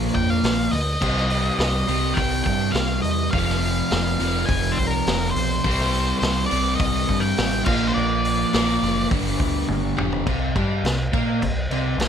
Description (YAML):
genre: classic rock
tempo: 104 BPM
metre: 4/4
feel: straight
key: C minor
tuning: A4 = 435 Hz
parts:
  - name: crunchy overdriven guitar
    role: riff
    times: 0.0-12.1 s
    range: F2 to C4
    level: -23 LUFS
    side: right 1 dB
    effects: none
  - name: deep dub picked electric bass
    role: bass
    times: 0.0-12.1 s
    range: F1 to Bb2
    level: -26 LUFS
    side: equal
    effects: none
  - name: octave-fuzz lead guitar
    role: melody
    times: 0.1-9.1 s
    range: Bb4 to Ab5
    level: -26 LUFS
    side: equal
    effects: distortion
  - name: vintage drum kit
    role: drums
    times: 0.1-12.1 s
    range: crash cymbal, hi-hat, kick drum, snare drum, toms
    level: -25 LUFS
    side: equal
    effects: none
room: moderate studio reverb, RT60 0.5 s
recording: none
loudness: -19 LUFS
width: side -8 dB against mid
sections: 0.0-10.3 A section; 10.3-12.1 B section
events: drum fill 9.7-10.3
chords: 0.0 Bb; 1.0 Cm; 3.3 F5; 5.6 C5; 7.7 Bb; 9.1 G5; 10.3 C5